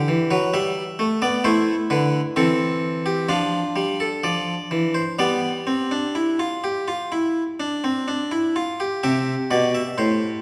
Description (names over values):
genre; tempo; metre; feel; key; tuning
classical, baroque-style 3-part fugue for harpsichord; 64 BPM; 4/4; straight; C major; A4 = 440 Hz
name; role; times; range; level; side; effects
harpsichord; solo; 0.0-10.4 s; A2 to E5; -22 LUFS; equal; none
room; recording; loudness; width
wet recital hall reverb, RT60 1.7 s; heard from further back in the room; -22 LUFS; mono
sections
0.0-9.0 A section; 9.0-10.4 B section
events
none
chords
0.0 Em; 1.5 Am; 3.3 Dm/F; 5.2 G5; 9.0 C